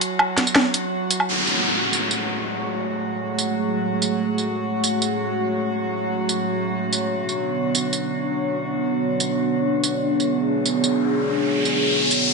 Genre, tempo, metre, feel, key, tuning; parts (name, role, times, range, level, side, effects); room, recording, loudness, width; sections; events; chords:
half-time drum and bass; 165 BPM; 4/4; half-time; F# minor; A4 = 440 Hz
drum and bass drum kit; drums; 0.0-12.2 s; hi-hat, snare drum, tambourine, woodblock; -20 LUFS; right 1 dB; studio reverb
metallic inharmonic drone; texture; 0.0-12.3 s; F#3 to F#4; -26 LUFS; right 1 dB; chorus, built-in reverb
dark analog pad; sustained chords; 1.3-12.3 s; A3 to C#5; -23 LUFS; equal; chorus
downlifter and riser; sound effects; 1.3-4.2, 10.8-12.3 s; -22 LUFS; equal
wet lush hall reverb, RT60 1.6 s; nothing above 10.8 kHz; -20 LUFS; side -3 dB against mid
0.0-1.3 A section; 1.3-12.3 B section
drop 0.0-1.3; riser 10.8-12.3
0.0 N.C.; 1.3 F#madd9; 7.1 Bmadd9